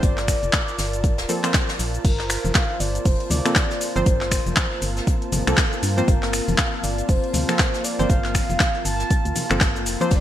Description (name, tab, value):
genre	deep house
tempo	119 BPM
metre	4/4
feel	swing 59% on 16ths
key	G minor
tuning	A4 = 437 Hz
part	mellow horn-like synth lead	melody	0.0-10.2 s	Bb4 to A5	-29 LUFS	equal	chorus, digital delay
part	warm analog pad	sustained chords	0.0-10.2 s	F4 to A5	-32 LUFS	right 2 dB	chorus, sidechain pumping
part	filtered dub chord stab	stabs	0.0-10.2 s	F3 to C5	-26 LUFS	equal	chorus, sidechain pumping
part	organ-like FM bass	bass	0.0-10.2 s	D1 to G2	-26 LUFS	equal	sidechain pumping
part	deep house drum kit	drums	0.0-10.2 s	cabasa, crash cymbal, finger snaps, handclaps, hi-hat, ride cymbal	-25 LUFS	left 1 dB	gated reverb
part	electronic kick drum	drums	0.0-10.2 s	none	-21 LUFS	equal	none
part	soft brush drum kit	drums	0.0-10.2 s	hi-hat, snare drum	-33 LUFS	left 2 dB	none
part	warbly tape-like pad	texture	2.7-10.2 s	Bb3 to A5	-32 LUFS	left 4 dB	chorus, built-in reverb, sidechain pumping
part	congas	percussion	2.5-10.1 s	none	-33 LUFS	left 2 dB	none
room	light reverb, digital ambience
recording	bright 1980s-style digital production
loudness	-19 LUFS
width	side -12 dB against mid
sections	0.0-10.2 A section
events	none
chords	0.0 Gm11